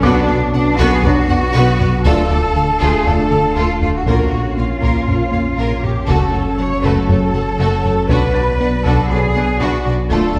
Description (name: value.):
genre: cinematic, hybrid orchestral and electronic film score.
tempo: 119 BPM.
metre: 4/4.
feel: straight.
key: unclear.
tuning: A4 = 439 Hz.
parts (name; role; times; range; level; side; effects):
clear symphonic violin section; melody; 0.0-10.4 s; A4 to F#5; -31 LUFS; equal; none.
clear symphonic violin section; second line; 0.0-10.4 s; F4 to D5; -30 LUFS; equal; none.
rich chamber viola section; accompaniment; 0.0-10.4 s; A3 to D4; -26 LUFS; equal; none.
mellow French horn section; sustained chords; 0.0-10.3 s; B3 to F#4; -27 LUFS; equal; none.
warbly tape-like pad; sustained chords; 0.0-10.4 s; F#3 to F5; -25 LUFS; equal; chorus, built-in reverb.
warm trombone section; sustained chords; 0.0-10.3 s; C#3 to B3; -31 LUFS; equal; none.
round analog bass; riff; 0.0-10.4 s; D2 to B3; -24 LUFS; equal; none.
clear symphonic double bass section; bass; 0.0-10.4 s; F#1 to D2; -25 LUFS; equal; none.
rich symphonic cello section; bass; 0.0-10.4 s; D4 to C#5; -22 LUFS; equal; none.
sub bass with octave; bass; 0.0-10.4 s; D1 to B1; -26 LUFS; equal; none.
taiko ensemble; drums; 0.0-10.4 s; none; -24 LUFS; equal; none.
felt-muted upright piano; texture; 0.0-10.4 s; A5 to A6; -33 LUFS; equal; none.
room: wet scoring stage reverb, RT60 1.5 s.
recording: heard from further back in the room.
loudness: -15 LUFS.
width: mono.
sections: 0.0-10.4 A section.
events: none.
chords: 0.0 Bm; 2.0 Dm; 4.1 A#m; 6.1 F#m; 8.1 Bm.